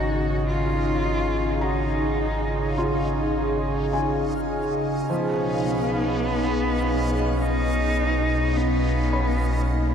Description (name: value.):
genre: ambient.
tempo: 52 BPM.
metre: 4/4.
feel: straight.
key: unclear.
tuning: A4 = 440 Hz.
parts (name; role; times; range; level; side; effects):
clear cello; melody; 0.0-9.9 s; A#3 to Gb4; -28 LUFS; left 1 dB; tape echo.
airy breathy pad; sustained chords; 0.0-9.9 s; B2 to Ab4; -26 LUFS; equal; chorus.
felt-muted upright piano; arpeggios; 0.0-9.9 s; F3 to B5; -32 LUFS; left 1 dB; tape echo.
warm sub bass; bass; 0.0-9.9 s; Ab1 to B1; -27 LUFS; equal; none.
hand-pumped harmonium; drone; 0.0-9.9 s; Db4; -34 LUFS; right 3 dB; none.
backwards swelling texture; texture; 0.4-9.9 s; Eb4 to F5; -32 LUFS; left 1 dB; built-in reverb.
room: wet huge ambient reverb, RT60 8.4 s.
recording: dark, warm production.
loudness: -21 LUFS.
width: side -8 dB against mid.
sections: 0.0-9.9 A section.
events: none.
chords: 0.0 Ab7sus4; 5.1 B.